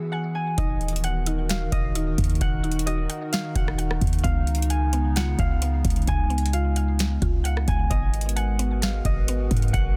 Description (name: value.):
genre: hip hop, atmospheric cloud-rap.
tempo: 131 BPM.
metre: 4/4.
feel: half-time.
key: Eb minor.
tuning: A4 = 440 Hz.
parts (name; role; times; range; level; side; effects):
concert harp; melody; 0.0-10.0 s; Eb5 to G#5; -35 LUFS; equal; digital delay.
warbly tape-like pad; sustained chords; 0.0-10.0 s; Db3 to Cb5; -34 LUFS; equal; chorus, built-in reverb, sidechain pumping.
mallet-like synth pluck; arpeggios; 0.0-10.0 s; B3 to G#5; -38 LUFS; equal; chorus, digital delay.
wind-like tuned noise texture; texture; 0.0-0.6, 9.0-10.0 s; Cb4 to Gb5; -50 LUFS; equal; none.
warm 808-style bass; bass; 0.6-10.0 s; Eb1 to Ab2; -26 LUFS; equal; none.
booming analog drum machine; drums; 0.6-9.9 s; hi-hat, kick drum, rim click, snare drum; -28 LUFS; equal; none.
room: little or no reverb.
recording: dense, heavily limited modern master.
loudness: -24 LUFS.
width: mono.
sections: 0.6-10.0 A section.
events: break 0.0-0.6.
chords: 0.0 E; 0.6 Ebm; 4.2 Db7; 7.9 Abm7.